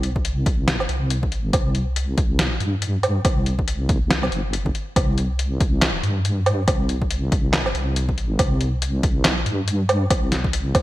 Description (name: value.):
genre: deep dubstep.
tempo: 140 BPM.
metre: 4/4.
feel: swing 58% on 16ths, half-time.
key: unclear.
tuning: A4 = 440 Hz.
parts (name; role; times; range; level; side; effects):
deep soft wobble bass; bass; 0.0-10.8 s; G1 to G2; -22 LUFS; equal; chorus.
trip hop sampler-style drum kit; drums; 0.0-10.8 s; handclaps, hi-hat, snare drum, woodblock; -23 LUFS; equal; studio reverb.
electronic kick drum; drums; 0.2-10.8 s; none; -22 LUFS; equal; overdrive, studio reverb.
room: light reverb, digital ambience.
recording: bright 1980s-style digital production.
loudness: -19 LUFS.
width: side -16 dB against mid.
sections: 0.0-10.8 A section.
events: none.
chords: none.